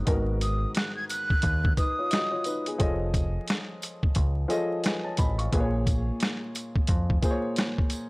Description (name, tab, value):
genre	hip hop, boom-bap hip-hop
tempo	88 BPM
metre	4/4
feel	swing 62% on 16ths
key	G# dorian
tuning	A4 = 440 Hz
part	dark concert grand piano	accompaniment	0.0-8.1 s	G#2 to C#6	-31 LUFS	left 1 dB	cassette tape, high-pass filter, low-pass filter
part	deep dub picked electric bass	bass	0.1-7.2 s	F1 to E#2	-28 LUFS	equal	transformer saturation
part	boom bap sampler-style drum kit	drums	0.1-8.1 s	hi-hat, kick drum, rim click, snare drum	-26 LUFS	equal	none
part	breathy jazz flute	melody	0.4-2.8 s	D#6 to G#6	-31 LUFS	equal	high-pass filter, low-pass filter, analog delay
part	tambourine	percussion	0.4-8.1 s	none	-44 LUFS	right 1 dB	none
room	small room reverb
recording	dry, gritty hardware recording, transformer saturation, vinyl crackle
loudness	-24 LUFS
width	side -26 dB against mid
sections	0.0-8.1 A section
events	none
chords	0.0 G#m7; 2.8 F7alt; 5.5 A#m7